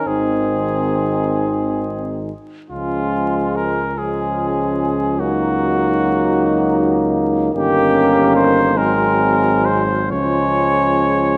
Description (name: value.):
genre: classical, hymn-like piece for brass band.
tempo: 41-53 BPM (dotted quarters).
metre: 6/8.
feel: rubato.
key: Db major.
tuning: A4 = 440 Hz.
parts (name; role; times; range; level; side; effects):
mellow cornet; melody; 0.0-11.4 s; F4 to Db5; -23 LUFS; equal; none.
clear euphonium; accompaniment; 0.0-11.4 s; Ab3 to C4; -23 LUFS; equal; none.
warm euphonium; accompaniment; 0.0-11.4 s; Eb3 to Gb3; -27 LUFS; equal; none.
dark French horn section; second line; 0.1-11.4 s; C4 to Eb4; -24 LUFS; equal; none.
mellow tuba; bass; 0.1-11.4 s; G1 to Db2; -26 LUFS; equal; none.
room: moderate concert hall reverb, RT60 1.9 s.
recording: vinyl crackle.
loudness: -17 LUFS.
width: mono.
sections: 0.0-11.4 A section.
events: none.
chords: 0.1 Ab; 2.7 Db; 5.2 Ebm/Db; 7.5 Eb7/G; 8.8 Ab7; 10.1 Db.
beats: | 0.07 1.36 | 2.70 3.96 | 5.18 6.37 | 7.54 8.76 | 10.12.